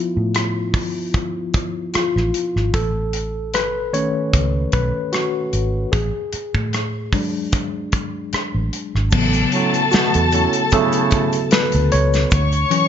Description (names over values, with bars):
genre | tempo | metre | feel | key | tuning
lush 1970s-style soul | 75 BPM | 4/4 | swing 54% on 16ths | A major | A4 = 440 Hz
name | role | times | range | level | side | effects
tine electric piano | accompaniment | 0.0-12.9 s | C#3 to C#5 | -22 LUFS | left 2 dB | medium stereo tremolo
vintage muted fingered electric bass | bass | 0.2-12.6 s | G#1 to A2 | -20 LUFS | right 1 dB | none
modern studio drum kit | drums | 0.3-12.9 s | crash cymbal, hi-hat, kick drum, rim click, snare drum | -21 LUFS | equal | none
warm symphonic string section | second line | 9.1-12.9 s | A4 to C#6 | -21 LUFS | left 2 dB | none
egg shaker | percussion | 9.1-12.7 s | none | -38 LUFS | right 15 dB | none
clear trombone section | stabs | 9.5-11.5 s | A2 to E4 | -22 LUFS | right 7 dB | none
room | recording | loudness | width
small room ambience | nothing above 7.5 kHz | -17 LUFS | side -9 dB against mid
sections
0.0-9.1 A section; 9.1-12.9 B section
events
tine electric piano solo 0.0-9.1, 9.1-12.9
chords
0.0 Fmaj7#11; 2.7 B7/A; 5.9 F#madd9; 9.1 A6; 12.3 Dmaj9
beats
0.34 1.14 1.94 | 2.74 3.54 4.34 5.14 | 5.93 6.73 7.53 8.33 | 9.13 9.93 10.72 11.52 | 12.32